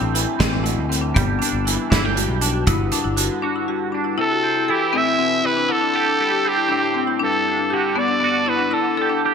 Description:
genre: math rock and midwest emo.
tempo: 79 BPM (dotted quarters).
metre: 6/8.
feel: straight.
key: unclear.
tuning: A4 = 439 Hz.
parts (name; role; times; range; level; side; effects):
twangy electric guitar; accompaniment; 0.0-9.3 s; G2 to G4; -24 LUFS; right 7 dB; analog chorus.
marimba with hard mallets; arpeggios; 0.0-9.3 s; B3 to A4; -23 LUFS; left 8 dB; none.
growling fingered electric bass; bass; 0.0-3.3 s; G1 to D2; -24 LUFS; right 1 dB; overdrive.
loose indie drum kit; drums; 0.2-3.3 s; hi-hat, kick drum, snare drum; -21 LUFS; right 2 dB; gated reverb.
growling trumpet; melody; 4.2-9.2 s; G4 to E5; -20 LUFS; right 1 dB; none.
room: moderate plate reverb, RT60 2.0 s, small room ambience.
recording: bright 1980s-style digital production.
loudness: -17 LUFS.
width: side -6 dB against mid.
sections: 0.0-4.2 A section; 4.2-9.3 B section.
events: break 3.4-4.2.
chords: 0.0 Am7; 1.2 Em7/G; 4.2 C6; 5.7 D7sus4; 7.2 Gmaj7; 8.7 Dsus4.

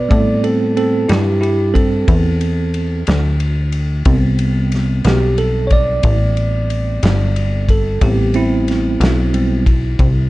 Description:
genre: slow blues.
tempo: 61 BPM (dotted quarters).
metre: 12/8.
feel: straight.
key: unclear.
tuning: A4 = 440 Hz.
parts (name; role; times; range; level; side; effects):
bell-like tine electric piano; accompaniment; 0.0-10.3 s; G3 to D5; -18 LUFS; right 2 dB; fast stereo tremolo.
plucky analog bass; bass; 0.0-10.3 s; G1 to A2; -16 LUFS; equal; none.
natural country drum kit; drums; 0.1-10.1 s; kick drum, ride cymbal, snare drum; -18 LUFS; equal; vintage 12-bit sampler grit.
room: light reverb, small room ambience.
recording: dark, warm production.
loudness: -13 LUFS.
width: side -18 dB against mid.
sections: 0.0-10.3 A section.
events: tine electric piano solo 0.0-10.3.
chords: 0.1 Am7.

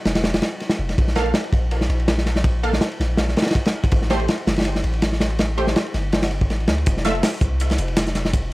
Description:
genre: drum and bass, jungle.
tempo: 163 BPM.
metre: 4/4.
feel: swing 54% on 16ths.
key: unclear.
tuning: A4 = 440 Hz.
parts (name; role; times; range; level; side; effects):
long sustained 808-style bass; bass; 0.1-8.5 s; F1 to D2; -22 LUFS; equal; none.
crunchy breakbeat drum kit; drums; 0.1-8.4 s; kick drum, ride cymbal, snare drum; -20 LUFS; equal; none.
orchestra-hit-like synth stab; stabs; 1.2-7.1 s; A3 to F5; -27 LUFS; right 2 dB; built-in reverb, dub echo.
breakbeat sampler-style drum kit; drums; 6.9-8.4 s; hi-hat, snare drum; -32 LUFS; right 1 dB; overdrive, high-pass filter on hats, high-pass filter on snare, high-pass filter on room.
room: small room ambience.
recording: none.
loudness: -18 LUFS.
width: side -20 dB against mid.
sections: 0.0-8.5 A section.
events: none.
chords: 0.0 N.C.; 1.0 Bb5; 3.9 Am7; 6.9 F5.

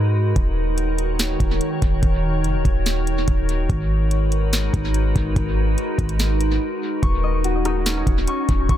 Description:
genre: hip hop, atmospheric cloud-rap.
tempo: 144 BPM.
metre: 4/4.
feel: half-time.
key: unclear.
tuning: A4 = 440 Hz.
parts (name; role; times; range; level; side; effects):
glassy FM pad; sustained chords; 0.0-8.8 s; D#3 to C#5; -24 LUFS; equal; ensemble chorus, built-in reverb, sidechain pumping.
warm 808-style bass; bass; 0.0-8.8 s; D#1 to G#2; -21 LUFS; equal; none.
smooth R&B drum kit; drums; 0.4-8.8 s; hi-hat, kick drum, rim click, snare drum; -22 LUFS; equal; dub echo.
concert harp; arpeggios; 7.0-8.8 s; C#4 to C#6; -25 LUFS; left 5 dB; dub echo.
room: digital ambience.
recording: echo-heavy mix.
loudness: -18 LUFS.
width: side -11 dB against mid.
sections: 0.0-7.0 A section; 7.0-8.8 B section.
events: break 6.6-7.0.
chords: 0.4 D#m7; 3.7 G#m7; 7.0 D#m7.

